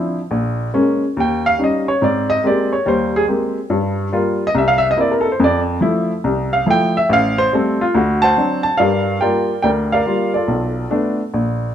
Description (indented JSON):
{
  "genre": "solo jazz",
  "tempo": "142 BPM",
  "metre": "4/4",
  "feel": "swing 66% on 8ths",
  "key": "unclear",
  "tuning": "A4 = 440 Hz",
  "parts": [
    { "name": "warm upright piano", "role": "solo", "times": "0.0-11.7 s", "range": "A1 to A5", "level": "-15 LUFS", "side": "equal", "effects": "none" }
  ],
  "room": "moderate large studio reverb, RT60 1.3 s",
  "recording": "dark, warm production",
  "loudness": "-14 LUFS",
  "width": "side -9 dB against mid",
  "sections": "0.0-8.8 A section; 8.8-11.7 B section",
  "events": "upright piano solo 0.0-8.8",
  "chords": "0.3 Bbm7; 1.2 Eb7; 2.0 Abmaj9; 3.7 Gm7; 4.5 C7; 5.4 Fmaj7; 7.1 Am7; 7.9 D7; 8.8 Gm7; 10.5 Bm7b5"
}